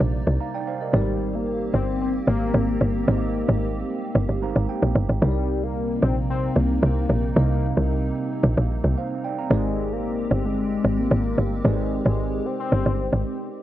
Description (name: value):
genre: amapiano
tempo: 112 BPM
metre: 4/4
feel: straight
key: unclear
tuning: A4 = 440 Hz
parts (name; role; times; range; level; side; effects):
- tine electric piano; accompaniment; 0.0-13.6 s; C3 to Bb5; -31 LUFS; right 7 dB; cassette tape
- hollow soft pad; sustained chords; 0.0-13.6 s; C3 to D5; -30 LUFS; right 1 dB; ensemble chorus, cassette tape
- woody log drum bass; bass; 0.0-13.2 s; G1 to C2; -22 LUFS; equal; none
- warm velvety synth lead; melody; 0.9-13.5 s; G3 to C4; -28 LUFS; left 6 dB; chorus, cassette tape, tape echo
room: moderate studio reverb, RT60 0.6 s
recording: home recording on cassette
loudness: -20 LUFS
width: side -13 dB against mid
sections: 0.0-13.6 A section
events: tine electric piano fill 4.1-5.2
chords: 0.0 Cm9; 0.9 Abmaj9#11; 5.2 Cm9; 9.5 Abmaj9#11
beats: 0.40 | 0.94 1.47 2.01 2.54 | 3.08 3.61 4.15 4.68 | 5.22 5.76 6.29 6.83 | 7.36 7.90 8.44 8.97 | 9.51 10.04 10.58 11.11 | 11.65 12.19 12.72 13.26